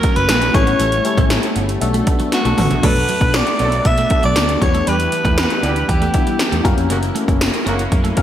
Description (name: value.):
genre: 1980s-style pop.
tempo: 118 BPM.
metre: 4/4.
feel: straight.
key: B minor.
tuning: A4 = 439 Hz.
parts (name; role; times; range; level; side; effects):
raspy alto saxophone; melody; 0.0-6.7 s; F#4 to E5; -20 LUFS; equal; digital delay.
glassy synth bell; second line; 0.0-6.6 s; F#5 to E6; -28 LUFS; left 2 dB; chorus, phaser, digital delay.
barky tine electric piano; accompaniment; 0.0-8.2 s; F#3 to A#4; -23 LUFS; left 5 dB; overdrive, phaser.
sweeping resonant pad; sustained chords; 0.0-8.2 s; A#2 to G4; -25 LUFS; right 1 dB; chorus.
twelve-string electric guitar; riff; 0.0-8.2 s; F#3 to B3; -26 LUFS; right 3 dB; lush chorus, digital delay.
80s electronic pad drums; drums; 0.0-8.2 s; crash cymbal, hi-hat, kick drum, snare drum, tambourine, toms; -18 LUFS; equal; gated reverb on snare and toms, gated reverb.
vintage muted fingered electric bass; bass; 0.2-8.1 s; F#1 to B2; -21 LUFS; equal; none.
dark horn section; stabs; 2.8-7.8 s; C#3 to A4; -28 LUFS; right 2 dB; none.
room: moderate lush hall reverb, RT60 2.0 s.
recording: bright 1980s-style digital production.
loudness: -14 LUFS.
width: side -11 dB against mid.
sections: 0.0-2.8 A section; 2.8-8.2 B section.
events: drum fill 2.3-2.8.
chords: 0.0 F#; 0.5 A7; 1.8 Bm7; 4.6 Em7; 6.6 F#.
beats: 0.29 | 0.80 1.31 1.82 2.33 | 2.83 3.34 3.85 4.36 | 4.87 5.38 5.88 6.39 | 6.90 7.41 7.92.